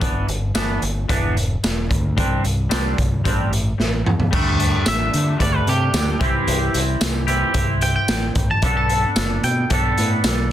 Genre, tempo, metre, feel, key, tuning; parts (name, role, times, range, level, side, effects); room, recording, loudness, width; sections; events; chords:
indie rock; 112 BPM; 4/4; straight; G major; A4 = 440 Hz
twangy electric guitar; riff; 0.0-10.5 s; E3 to A4; -23 LUFS; equal; double-tracked left and right
growling fingered electric bass; bass; 0.0-10.5 s; E1 to D3; -23 LUFS; equal; overdrive
raw garage drum kit; drums; 0.0-10.4 s; crash cymbal, hi-hat, kick drum, snare drum, tambourine, toms; -20 LUFS; equal
twangy electric guitar; melody; 4.9-10.5 s; G4 to A5; -24 LUFS; equal; plate reverb, tape echo
light reverb; dense, heavily limited modern master; -17 LUFS; side -11 dB against mid
0.0-4.3 A section; 4.3-10.5 B section
drum fill 3.8-4.3; clean electric guitar solo 4.3-10.5
0.0 G6; 2.2 Csus2; 4.3 Dsus4; 6.2 C; 8.6 Gadd9